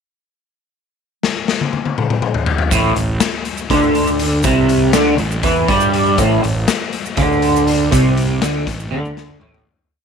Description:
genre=psychedelic rock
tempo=242 BPM (eighths)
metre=7/8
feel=straight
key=unclear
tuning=A4 = 440 Hz
part: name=raw garage drum kit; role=drums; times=1.2-9.7 s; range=hi-hat, kick drum, snare drum, toms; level=-19 LUFS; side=left 4 dB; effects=none
part: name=twangy electric guitar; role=riff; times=2.7-9.7 s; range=A2 to G3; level=-15 LUFS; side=right 1 dB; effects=rotary speaker, double-tracked left and right
part: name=fuzz fingered electric bass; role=bass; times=2.7-9.7 s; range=A1 to G2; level=-20 LUFS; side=right 2 dB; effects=overdrive
part: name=tube shaker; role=percussion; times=2.7-9.1 s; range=none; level=-31 LUFS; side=right 15 dB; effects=none
room=light reverb, small room ambience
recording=1960s-style stereo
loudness=-14 LUFS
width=side -6 dB against mid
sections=1.0-2.7 pickup bar; 2.7-9.7 riff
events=drum fill 1.2-2.7, 8.9-9.7; fade-out 7.9-9.7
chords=1.0 N.C.; 2.7 A5

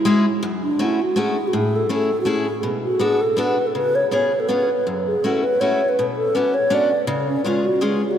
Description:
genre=musette waltz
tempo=162 BPM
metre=3/4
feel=straight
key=F# minor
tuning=A4 = 439 Hz
part: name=mellow hollow alto flute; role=melody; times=0.0-8.2 s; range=C#4 to D5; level=-19 LUFS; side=equal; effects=none
part: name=picked steel-string acoustic guitar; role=accompaniment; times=0.1-8.0 s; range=F#2 to A4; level=-22 LUFS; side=left 2 dB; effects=none
room=wet cathedral reverb, RT60 6.7 s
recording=in a vast, echoing space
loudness=-17 LUFS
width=side -9 dB against mid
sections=0.4-8.2 A section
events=none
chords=0.4 F#m7; 1.5 Amaj7; 2.6 Bm7; 3.7 C#7; 4.9 F#m7; 6.0 Bmadd9; 7.1 C#

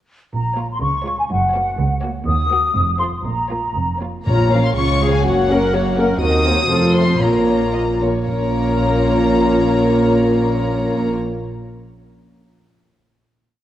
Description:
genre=quick classical-period movement for symphony orchestra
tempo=110-128 BPM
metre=2/4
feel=rubato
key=Bb minor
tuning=A4 = 441 Hz
part: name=flute section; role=second line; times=0.3-4.0 s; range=Gb5 to Eb6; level=-20 LUFS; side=left 2 dB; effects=none
part: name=clear chamber double bass section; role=bass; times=0.3-11.1 s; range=F1 to Eb2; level=-22 LUFS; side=right 2 dB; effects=none
part: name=warm chamber cello section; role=bass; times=0.3-11.1 s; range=Db2 to Db3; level=-23 LUFS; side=right 2 dB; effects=none
part: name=warm chamber violin section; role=melody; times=0.6-11.1 s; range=C5 to Eb6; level=-24 LUFS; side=left 3 dB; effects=none
part: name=warm chamber violin section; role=second line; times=0.6-11.1 s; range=F4 to Gb5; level=-23 LUFS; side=left 3 dB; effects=none
part: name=dark chamber viola section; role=accompaniment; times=0.6-11.1 s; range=Ab3 to Bb4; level=-21 LUFS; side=equal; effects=none
part: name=timpani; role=percussion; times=4.3-4.7, 7.2-11.8 s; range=Bb2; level=-25 LUFS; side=left 1 dB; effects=none
part: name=mellow French horn section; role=sustained chords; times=4.5-11.1 s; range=F3 to Db4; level=-22 LUFS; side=left 1 dB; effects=none
room=wet concert hall reverb, RT60 2.1 s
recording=worn, warbling old tape, cassette tape, warbly pitch drift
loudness=-15 LUFS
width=side -12 dB against mid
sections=0.3-4.3 A section; 4.3-8.3 A section; 8.3-10.3 final chord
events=slowing down 5.7-8.3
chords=0.3 Bbm; 0.8 Db; 1.3 Gb; 2.3 Cm7b5/Eb; 2.8 F7; 3.2 Bbm; 4.8 Db; 5.3 Gb; 6.2 Cm7b5/Eb; 6.7 F7; 7.2 Bbm

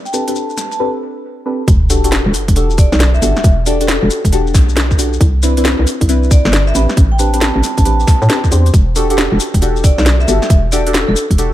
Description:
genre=UK garage, two-step garage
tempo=136 BPM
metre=4/4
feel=swing 65% on 16ths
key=E minor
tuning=A4 = 440 Hz
part: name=vibraphone with medium mallets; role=melody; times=0.1-11.1 s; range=A4 to A5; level=-21 LUFS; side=moving between left 4 dB and right 4 dB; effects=auto-pan, dub echo
part: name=deep mellow chord stab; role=stabs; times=0.1-11.5 s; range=C4 to C5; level=-19 LUFS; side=left 1 dB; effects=chorus, phaser
part: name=garage drum kit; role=drums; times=0.1-11.5 s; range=hi-hat, shaker, snare drum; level=-18 LUFS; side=equal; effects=none
part: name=hollow knocking FM bass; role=bass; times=1.7-11.5 s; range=E1 to A2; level=-14 LUFS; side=equal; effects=tube saturation
part: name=electronic kick drum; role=drums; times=1.7-11.4 s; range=none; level=-10 LUFS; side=equal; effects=none
part: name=sub drop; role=sound effects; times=1.7-3.4 s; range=none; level=-19 LUFS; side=equal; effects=none
room=digital ambience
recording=none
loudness=-10 LUFS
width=side -14 dB against mid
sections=0.0-1.7 A section; 1.7-11.5 B section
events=filter sweep on synth stab 0.0-1.7; drop 1.7-11.5; impact 1.7-3.4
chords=0.0 Am11; 1.7 Em11; 5.2 Cmaj9; 6.8 Am11; 8.7 Em11

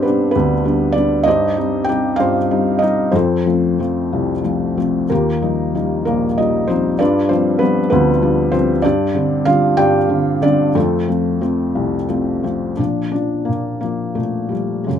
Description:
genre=classical, lyrical solo piano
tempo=56-66 BPM (dotted quarters)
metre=6/8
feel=rubato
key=unclear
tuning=A4 = 440 Hz
part: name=felt-muted upright piano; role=solo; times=0.0-15.0 s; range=Bb1 to G5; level=-14 LUFS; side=left 1 dB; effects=none
room=light reverb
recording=close, detailed microphones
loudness=-14 LUFS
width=side -8 dB against mid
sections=0.0-12.8 A section; 12.8-15.0 B section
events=none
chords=0.0 G; 1.3 Cm/G; 3.1 F; 5.1 Ebadd9; 7.0 G7; 8.8 Csus2/G; 10.8 F; 12.8 Bb5

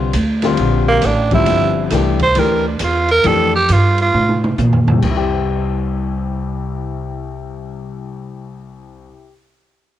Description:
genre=modal jazz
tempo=135 BPM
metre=4/4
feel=swing 66% on 8ths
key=C mixolydian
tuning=A4 = 439 Hz
part: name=warm grand piano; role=accompaniment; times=0.0-9.3 s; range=C2 to G4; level=-20 LUFS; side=left 7 dB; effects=none
part: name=upright bass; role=bass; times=0.0-9.1 s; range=G1 to Bb2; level=-18 LUFS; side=right 1 dB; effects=none
part: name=open jazz drum kit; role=drums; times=0.1-5.2 s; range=crash cymbal, hi-hat, kick drum, ride cymbal, snare drum, toms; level=-22 LUFS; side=right 1 dB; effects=cassette tape
part: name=growling tenor saxophone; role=melody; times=0.9-4.4 s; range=Bb3 to C5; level=-15 LUFS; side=right 3 dB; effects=cassette tape
room=light reverb, small room ambience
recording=home recording on cassette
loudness=-13 LUFS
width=side -12 dB against mid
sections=0.0-5.0 A section; 5.0-8.6 B section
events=tenor saxophone solo 0.0-5.0; drum fill 4.1-5.0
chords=0.0 C9sus4; 5.0 C

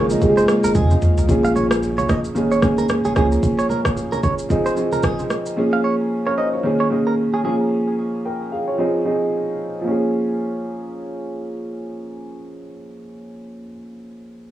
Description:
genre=afrobeats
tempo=112 BPM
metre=4/4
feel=swing 58% on 16ths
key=Bb minor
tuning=A4 = 439 Hz
part: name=soft octave-layered synth lead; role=melody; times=0.0-0.8 s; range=Ab4 to Bb4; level=-22 LUFS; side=right 1 dB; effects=chorus, tape echo
part: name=dark baby grand piano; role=accompaniment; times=0.0-14.5 s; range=Eb3 to G5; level=-20 LUFS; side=equal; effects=low-pass filter, cassette tape
part: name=ethereal airy pad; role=sustained chords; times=0.0-1.3 s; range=Db3 to F4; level=-28 LUFS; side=left 1 dB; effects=ensemble chorus, built-in reverb, cassette tape
part: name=direct-recorded clean electric guitar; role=riff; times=0.0-7.6 s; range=Ab4 to F5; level=-25 LUFS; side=right 4 dB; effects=low-pass filter, cassette tape, tape echo
part: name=warm sub bass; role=bass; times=0.0-3.4 s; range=Eb1 to F2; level=-24 LUFS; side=equal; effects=none
part: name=afro-pop drum kit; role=drums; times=0.1-5.6 s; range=kick drum, rim click, shaker, toms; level=-20 LUFS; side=equal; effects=overdrive, cassette tape
part: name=congas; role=percussion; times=0.2-5.3 s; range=none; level=-29 LUFS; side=right 1 dB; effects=none
room=light reverb, digital ambience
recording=home recording on cassette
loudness=-17 LUFS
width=side -13 dB against mid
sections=0.0-1.3 A section; 1.3-9.9 B section; 9.9-14.1 C section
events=drum fill 0.8-1.3; filter sweep 1.3-9.9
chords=0.2 Fm7; 1.3 Bbm7; 2.4 Eb7sus4; 3.2 Db6; 4.5 Fm7; 5.6 Bbm7; 6.6 Eb7sus4; 7.4 Db6; 8.8 Fm7; 9.9 Bbm7

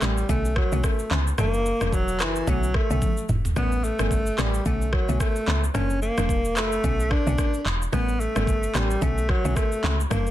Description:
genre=afrobeats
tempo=110 BPM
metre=4/4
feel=swing 58% on 16ths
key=B minor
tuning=A4 = 439 Hz
part: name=warm alto saxophone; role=melody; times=0.0-10.3 s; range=E3 to D4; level=-27 LUFS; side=equal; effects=ping-pong delay
part: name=glassy wavetable pluck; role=accompaniment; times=0.0-10.3 s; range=D3 to D4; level=-32 LUFS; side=left 1 dB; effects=chorus
part: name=woody log drum bass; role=bass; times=0.0-10.3 s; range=E1 to C#2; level=-26 LUFS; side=equal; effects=none
part: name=afro-pop drum kit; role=drums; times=0.0-10.3 s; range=handclaps, kick drum, rim click, shaker, toms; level=-26 LUFS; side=equal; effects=soft clipping on snare
room=little or no reverb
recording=dense, heavily limited modern master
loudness=-21 LUFS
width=side -13 dB against mid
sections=0.0-10.3 A section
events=drum fill 3.0-3.6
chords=0.3 Bm9; 1.4 F#7b9b13; 2.5 Bm9; 3.6 A9; 4.7 Bm9; 5.7 F#7b9b13; 6.8 Bm9; 7.9 A9; 9.0 Bm9

